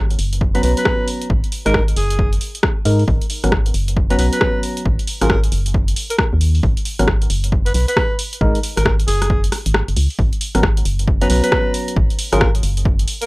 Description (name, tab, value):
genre	UK garage, two-step garage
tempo	135 BPM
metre	4/4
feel	swing 63% on 16ths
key	G# minor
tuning	A4 = 440 Hz
part	organ-like FM bass	bass	0.0-13.1 s	F#1 to G#2	-18 LUFS	equal	none
part	punchy analog drum machine	drums	0.1-13.3 s	hi-hat, rim click	-22 LUFS	equal	none
part	electronic kick drum	drums	0.4-13.0 s	none	-19 LUFS	equal	none
part	breathy alto saxophone	melody	0.6-13.3 s	G#4 to B4	-23 LUFS	equal	tape echo
part	percussive organ stab	stabs	0.6-12.5 s	F#3 to A#5	-21 LUFS	equal	chorus, tape echo
room	little or no reverb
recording	dry, gritty hardware recording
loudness	-15 LUFS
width	side -23 dB against mid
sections	0.0-13.3 A section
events	filter sweep on synth stab 0.0-13.3; kick drops out 9.7-10.2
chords	0.0 G#m11; 1.3 F#69; 3.1 G#m11; 4.9 D#m11; 6.6 G#m7; 8.4 F#69; 10.2 G#m11; 12.0 D#m11 (rootless)